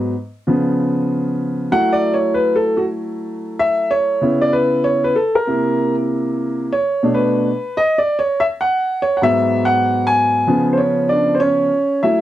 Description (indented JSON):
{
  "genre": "hip hop",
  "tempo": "96 BPM",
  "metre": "4/4",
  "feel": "swing 63% on 16ths",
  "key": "F# minor",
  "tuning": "A4 = 443 Hz",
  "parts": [
    { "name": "dark concert grand piano", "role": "solo", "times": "0.0-12.2 s", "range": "G#2 to G#5", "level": "-15 LUFS", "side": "equal", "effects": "none" }
  ],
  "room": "little or no reverb",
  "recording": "dry, close 1970s-style studio recording",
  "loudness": "-15 LUFS",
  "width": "side -13 dB against mid",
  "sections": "0.0-1.7 A section; 1.7-11.7 A section",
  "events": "grand piano solo 0.0-1.7, 1.7-11.7",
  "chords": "0.5 C#7; 1.7 F#m7; 4.2 C#m7; 5.5 C7; 6.7 Bm7; 9.2 G#m7; 10.5 C#7b9",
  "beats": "0.47 1.10 | 1.72 2.35 2.97 3.60 | 4.22 4.85 5.47 6.10 | 6.72 7.35 7.97 8.60 | 9.22 9.85 10.47 11.10 | 11.72"
}